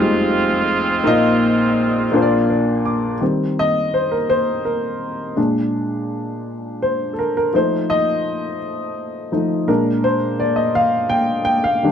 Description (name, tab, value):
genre	gospel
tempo	56 BPM (dotted quarters)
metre	6/8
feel	straight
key	unclear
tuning	A4 = 441 Hz
part	clear horn section	melody	0.0-2.5 s	Ab3 to F4	-20 LUFS	right 3 dB	none
part	warm upright piano	accompaniment	0.0-11.9 s	F1 to D6	-17 LUFS	left 1 dB	none
room	little or no reverb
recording	dry, close 1970s-style studio recording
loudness	-16 LUFS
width	side -8 dB against mid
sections	0.0-3.2 A section; 3.2-11.9 B section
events	upright piano fill 2.1-3.2; upright piano solo 3.2-11.9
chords	0.0 Fm7; 1.0 Bbsus4; 2.1 Bb; 3.2 Eb6; 5.4 Bb7; 7.5 F7; 9.7 Bb7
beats	| 1.04 2.13 | 3.21 4.29 | 5.38 6.46 | 7.54 8.61 | 9.69 10.77 | 11.84